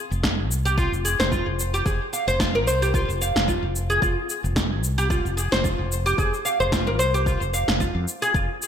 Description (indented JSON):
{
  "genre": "organic downtempo",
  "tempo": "111 BPM",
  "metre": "4/4",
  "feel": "swing 55% on 16ths",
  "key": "F minor",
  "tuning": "A4 = 440 Hz",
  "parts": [
    { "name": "mellow fretless electric bass", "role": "bass", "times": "0.1-8.5 s", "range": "F1 to F2", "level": "-25 LUFS", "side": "equal", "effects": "none" },
    { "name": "electronic shaker and snare drum", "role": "drums", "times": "0.1-8.7 s", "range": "none", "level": "-27 LUFS", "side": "equal", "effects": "overdrive, gated reverb" },
    { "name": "electronic kick drum", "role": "drums", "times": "0.2-8.5 s", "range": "none", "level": "-27 LUFS", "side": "equal", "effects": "overdrive" },
    { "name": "oud", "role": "arpeggios", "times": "0.7-8.5 s", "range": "F4 to F5", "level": "-24 LUFS", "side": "equal", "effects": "ping-pong delay" }
  ],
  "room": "moderate plate reverb, RT60 1.9 s, digital ambience",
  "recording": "bright 1980s-style digital production",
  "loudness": "-20 LUFS",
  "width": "side -8 dB against mid",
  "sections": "0.0-8.7 A section",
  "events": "none",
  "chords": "0.0 F5"
}